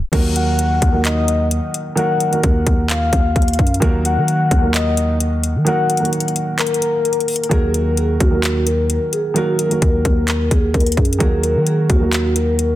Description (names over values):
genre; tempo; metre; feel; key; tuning
hip hop, trap; 130 BPM; 4/4; half-time; Eb minor; A4 = 440 Hz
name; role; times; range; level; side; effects
vibraphone with soft mallets; melody; 0.0-0.1, 7.5-12.8 s; Gb4 to Bb4; -22 LUFS; equal; low-pass filter, tape echo
dark concert grand piano; accompaniment; 0.0-12.8 s; Eb3 to Bb4; -21 LUFS; right 2 dB; low-pass filter
growling 808-style bass; bass; 0.0-12.8 s; Eb2 to Eb3; -18 LUFS; equal; none
trap drum kit; drums; 0.1-12.7 s; crash cymbal, handclaps, hi-hat, kick drum; -18 LUFS; equal; none
soft octave-layered synth lead; second line; 0.4-7.5 s; Bb4 to Gb5; -21 LUFS; left 4 dB; chorus, tape echo
room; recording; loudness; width
digital ambience; dense, heavily limited modern master, tape stop; -14 LUFS; side -14 dB against mid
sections
0.1-12.8 A section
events
kick muted 5.7-7.5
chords
0.1 Ebm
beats
| 0.13 0.59 1.05 1.51 | 1.97 2.44 2.90 3.36 | 3.82 4.28 4.74 5.20 | 5.67 6.13 6.59 7.05 | 7.51 7.97 8.44 8.90 | 9.36 9.82 10.28 10.74 | 11.20 11.67 12.13 12.59